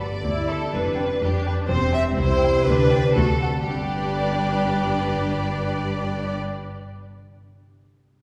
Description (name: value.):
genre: cinematic, playful, whimsical film cue.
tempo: 123 BPM.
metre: 2/4.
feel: straight.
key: G major.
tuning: A4 = 440 Hz.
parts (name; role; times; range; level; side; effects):
rich studio violin section; melody; 0.0-6.4 s; D5 to B5; -35 LUFS; equal; none.
clear studio violin section; second line; 0.0-6.4 s; G4 to E5; -27 LUFS; equal; none.
concert harp; arpeggios; 0.0-7.6 s; E2 to D5; -29 LUFS; equal; none.
clear studio cello section; bass; 0.0-6.4 s; C2 to G2; -32 LUFS; equal; none.
rich studio double bass section; bass; 0.0-6.4 s; E1 to D2; -30 LUFS; equal; none.
clear studio viola section; accompaniment; 0.3-6.4 s; C4 to B4; -32 LUFS; equal; none.
room: wet scoring stage reverb, RT60 2.0 s.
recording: heard from further back in the room.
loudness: -22 LUFS.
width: mono.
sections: 0.0-3.7 A section; 3.7-5.6 B section.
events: none.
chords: 0.0 G; 0.7 G7/F; 1.7 C/E; 2.2 C; 2.7 G/D; 3.2 D7; 3.7 G.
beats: 0.25 | 0.74 1.22 | 1.70 2.18 | 2.66 3.16 | 3.66 4.15 | 4.64 5.13.